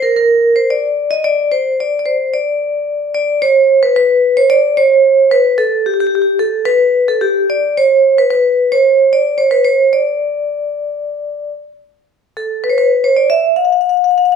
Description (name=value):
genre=arabic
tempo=111 BPM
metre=4/4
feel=straight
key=D maqam rast from 3.4 s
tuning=A4 = 440 Hz
part: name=vibraphone with medium hard mallets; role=solo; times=0.0-14.4 s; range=G4 to F#5-50c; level=-11 LUFS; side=equal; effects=none
room=moderate large studio reverb, RT60 0.8 s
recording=band playing live in one room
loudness=-11 LUFS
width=side -6 dB against mid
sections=0.0-3.4 A section; 3.4-12.1 B section; 12.1-14.4 C section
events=none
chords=none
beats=0.15 0.70 | 1.24 1.78 2.33 2.87 | 3.41 3.96 4.50 5.04 | 5.58 6.13 6.67 7.21 | 7.75 8.30 8.84 9.38 | 9.92 10.46 11.01 11.55 | 12.09 12.63 13.17 13.71 | 14.26